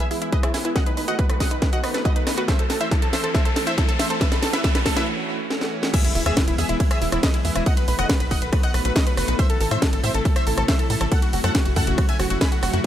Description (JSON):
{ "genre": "uplifting trance", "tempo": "139 BPM", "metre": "4/4", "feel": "straight", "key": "E major", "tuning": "A4 = 443 Hz", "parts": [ { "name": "supersaw stab", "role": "melody", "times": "0.0-12.8 s", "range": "E4 to B5", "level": "-28 LUFS", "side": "equal", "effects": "sidechain pumping, digital delay" }, { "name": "analog pluck", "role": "second line", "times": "0.0-12.8 s", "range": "E4 to B5", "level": "-30 LUFS", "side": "equal", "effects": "chorus, sidechain pumping, digital delay" }, { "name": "analog pluck", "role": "arpeggios", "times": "0.0-5.0 s", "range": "D#4 to A5", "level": "-31 LUFS", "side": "right 3 dB", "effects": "chorus, sidechain pumping, digital delay" }, { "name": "house drum kit", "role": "drums", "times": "0.0-12.8 s", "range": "crash cymbal, hi-hat, ride cymbal, rim click, snare drum", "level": "-26 LUFS", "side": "equal", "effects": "overdrive" }, { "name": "riser and impact", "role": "sound effects", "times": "0.9-7.7 s", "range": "none", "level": "-33 LUFS", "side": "equal", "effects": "none" }, { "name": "lush unison pad", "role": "sustained chords", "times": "0.1-12.9 s", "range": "C3 to A4", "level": "-29 LUFS", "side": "left 1 dB", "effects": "chorus, sidechain pumping" }, { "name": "electronic kick drum", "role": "drums", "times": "0.3-12.5 s", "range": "none", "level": "-21 LUFS", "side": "equal", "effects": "overdrive" }, { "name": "tight sequencer bass", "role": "bass", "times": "6.2-12.8 s", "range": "E1 to A2", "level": "-24 LUFS", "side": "equal", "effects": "sidechain pumping" } ], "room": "little or no reverb", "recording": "none", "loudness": "-18 LUFS", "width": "side -11 dB against mid", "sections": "0.0-5.9 A section; 5.9-12.9 B section", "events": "build-up 0.0-5.9; drum fill 0.0-5.1, 5.5-5.9; filter sweep on synth pluck 0.0-5.9; riser 0.9-5.1; break 5.1-5.9; drop 5.9-12.9; impact 5.9-7.7", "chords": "0.0 E; 0.8 B7; 2.5 Am; 4.2 F#m7; 5.9 E; 7.7 B7; 9.4 Am; 11.1 F#m7" }